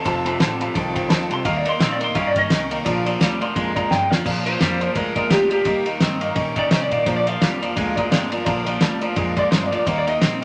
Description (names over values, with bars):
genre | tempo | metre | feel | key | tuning
rockabilly | 171 BPM | 4/4 | swing 58% on 8ths | Bb major | A4 = 441 Hz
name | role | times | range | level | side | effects
electric guitar through a small old amp | melody | 0.0-10.4 s | G4 to C6 | -25 LUFS | equal | phaser
picked steel-string acoustic guitar | accompaniment | 0.0-10.4 s | Bb2 to Bb4 | -31 LUFS | equal | none
twangy electric guitar | riff | 0.0-10.4 s | F2 to Db4 | -28 LUFS | equal | spring reverb
honky-tonk upright piano | accompaniment | 0.1-10.4 s | C5 to C6 | -30 LUFS | equal | none
upright bass | bass | 0.1-10.4 s | F1 to C3 | -32 LUFS | equal | none
cloth-damped thuddy drum kit | drums | 0.1-10.3 s | crash cymbal, kick drum, ride cymbal, snare drum | -25 LUFS | equal | none
room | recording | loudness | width
moderate club reverb, RT60 0.6 s | none | -20 LUFS | mono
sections
0.0-4.3 A section; 4.3-10.4 B section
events
drum fill 3.9-4.3; clean electric guitar solo 4.3-10.4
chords
0.0 F; 1.5 Eb; 2.9 Bb; 5.7 Eb; 7.1 Bb; 9.9 Eb